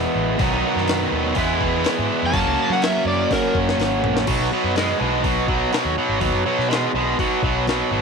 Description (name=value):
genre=blues rock power trio and southern rock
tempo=124 BPM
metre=4/4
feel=straight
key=B major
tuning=A4 = 440 Hz
part: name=overdriven tonewheel organ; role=sustained chords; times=0.0-8.0 s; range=F#3 to D#5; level=-30 LUFS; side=right 11 dB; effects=chorus vibrato, wide subtle chorus
part: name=overdriven electric guitar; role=riff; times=0.0-8.0 s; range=B2 to F#4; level=-20 LUFS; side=equal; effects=none
part: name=vintage muted picked electric bass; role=bass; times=0.0-8.0 s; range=G#1 to F#3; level=-26 LUFS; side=equal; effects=none
part: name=jungle sampler-style drum kit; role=drums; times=0.4-7.8 s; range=crash cymbal, hi-hat, kick drum, snare drum, toms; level=-26 LUFS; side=left 3 dB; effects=none
part: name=overdriven slide guitar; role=melody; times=2.3-3.5 s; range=A#4 to A5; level=-22 LUFS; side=left 1 dB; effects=slapback echo
room=light reverb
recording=1960s-style stereo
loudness=-18 LUFS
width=side -5 dB against mid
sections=0.0-4.3 A section; 4.3-8.0 B section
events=electric slide guitar solo 0.0-4.3; drum fill 3.3-4.3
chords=0.4 B; 1.4 E; 2.3 F#; 4.3 B